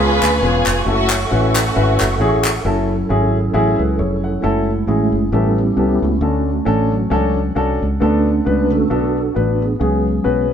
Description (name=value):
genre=uptempo gospel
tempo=134 BPM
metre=4/4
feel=swing 56% on 8ths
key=F# minor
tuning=A4 = 441 Hz
part: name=warm studio string section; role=melody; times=0.0-2.4 s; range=A3 to B4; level=-20 LUFS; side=right 1 dB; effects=none
part: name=warm grand piano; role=accompaniment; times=0.0-10.5 s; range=A2 to F#5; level=-19 LUFS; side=left 3 dB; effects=none
part: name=mellow tonewheel organ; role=sustained chords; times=0.0-10.5 s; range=D3 to C#6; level=-20 LUFS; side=right 2 dB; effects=fast rotary speaker, chorus vibrato
part: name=fingered electric bass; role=bass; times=0.0-10.5 s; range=E1 to D2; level=-19 LUFS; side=equal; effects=none
part: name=group handclap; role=percussion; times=0.2-2.5 s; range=none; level=-22 LUFS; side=left 1 dB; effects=none
room=moderate stone room reverb, RT60 1.3 s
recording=band playing live in one room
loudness=-14 LUFS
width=side -8 dB against mid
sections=0.0-2.6 A section; 2.6-4.4 B section; 4.4-10.5 C section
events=tonewheel organ solo 4.4-10.5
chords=0.0 C#7; 0.9 F#m7; 5.3 A9; 6.2 Dmaj7; 8.0 Bm7; 9.8 C#7sus4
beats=0.42 | 0.86 1.31 1.76 2.20 | 2.65 3.09 3.54 3.99 | 4.43 4.88 5.33 5.78 | 6.22 6.67 7.12 7.56 | 8.01 8.46 8.91 9.35 | 9.80 10.25